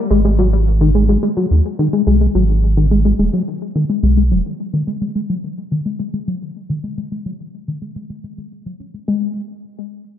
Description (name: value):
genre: IDM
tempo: 107 BPM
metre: 4/4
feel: straight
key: G# minor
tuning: A4 = 440 Hz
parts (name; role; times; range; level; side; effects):
- deep acid bass; arpeggios; 0.1-9.3 s; D#3 to C#4; -18 LUFS; left 2 dB; wide subtle chorus, ping-pong delay
- warm sub bass; bass; 0.1-4.4 s; D#1 to D#2; -14 LUFS; right 1 dB; none
room: moderate lush hall reverb, RT60 1.7 s, studio reverb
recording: dreamy mix soaked in reverb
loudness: -14 LUFS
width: side -10 dB against mid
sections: 0.1-9.1 A section; 9.1-10.2 B section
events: filter sweep on acid bass 0.1-9.1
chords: 0.1 G#5; 4.6 D#madd11; 9.1 N.C.